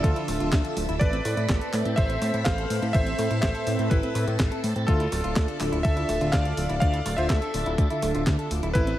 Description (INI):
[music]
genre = italo disco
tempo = 124 BPM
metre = 4/4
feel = straight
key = unclear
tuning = A4 = 440 Hz
[part]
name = bright electric grand piano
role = melody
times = 0.0-9.0 s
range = E4 to F5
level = -29 LUFS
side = equal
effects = tape echo
[part]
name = phased string machine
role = sustained chords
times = 0.0-9.0 s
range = F3 to B5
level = -34 LUFS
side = equal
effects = ensemble chorus, phaser
[part]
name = direct-recorded clean electric guitar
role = arpeggios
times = 0.0-8.9 s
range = A3 to B4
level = -35 LUFS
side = right 2 dB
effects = digital delay
[part]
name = mellow synth brass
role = stabs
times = 0.0-8.9 s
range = A2 to E5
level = -32 LUFS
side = left 1 dB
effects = chorus
[part]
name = fat analog bass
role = bass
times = 0.0-8.9 s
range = D1 to A2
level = -28 LUFS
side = equal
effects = none
[part]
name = clean 12-bit digital drum machine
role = drums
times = 0.0-9.0 s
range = handclaps, hi-hat, snare drum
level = -33 LUFS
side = equal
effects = overdrive
[part]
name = electronic kick drum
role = drums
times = 0.0-8.8 s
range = none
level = -23 LUFS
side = equal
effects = overdrive
[sound]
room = light reverb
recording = vinyl crackle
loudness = -22 LUFS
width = side -13 dB against mid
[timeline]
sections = 0.0-9.0 A section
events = none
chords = 0.0 Dmadd9; 1.0 Amadd9; 4.9 Dmadd9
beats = 0.04 0.53 | 1.01 1.49 1.98 2.46 | 2.94 3.43 3.91 4.40 | 4.88 5.36 5.85 6.33 | 6.82 7.30 7.78 8.27 | 8.75